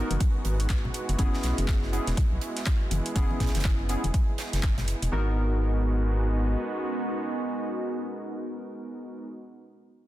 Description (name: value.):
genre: deep house.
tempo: 122 BPM.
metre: 4/4.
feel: swing 60% on 16ths.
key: G# minor.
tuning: A4 = 441 Hz.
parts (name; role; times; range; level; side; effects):
warm analog pad; sustained chords; 0.0-9.3 s; G#3 to G#4; -35 LUFS; right 2 dB; chorus, sidechain pumping.
warm analog keys; stabs; 0.0-9.3 s; B3 to A#4; -34 LUFS; equal; chorus, low-pass filter, digital delay.
organ-like FM bass; bass; 0.0-6.6 s; E1 to B1; -27 LUFS; equal; sidechain pumping.
warbly tape-like pad; texture; 0.2-9.4 s; B3 to B4; -38 LUFS; equal; chorus, built-in reverb, sidechain pumping.
deep house drum kit; drums; 0.1-5.1 s; handclaps, hi-hat; -35 LUFS; equal; studio reverb.
congas; percussion; 0.1-4.9 s; none; -35 LUFS; left 3 dB; none.
electronic kick drum; drums; 0.2-4.7 s; none; -26 LUFS; equal; overdrive, studio reverb.
huge arena drum kit; drums; 0.2-5.0 s; hi-hat, snare drum; -40 LUFS; right 2 dB; sidechain pumping on hats, high-pass filter on hats, studio reverb, high-pass filter on snare, high-pass filter on room.
room: small room ambience.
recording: dense, heavily limited modern master.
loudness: -25 LUFS.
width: side -15 dB against mid.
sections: 0.0-5.1 A section; 5.1-9.1 B section.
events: none.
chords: 0.0 G#m7; 0.9 F#9sus4; 5.1 G#m7.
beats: 0.20 0.70 | 1.19 1.68 2.17 2.67 | 3.16 3.65 4.14 4.63 | 5.12 5.62 6.11 6.60 | 7.09 7.58 8.07 8.57.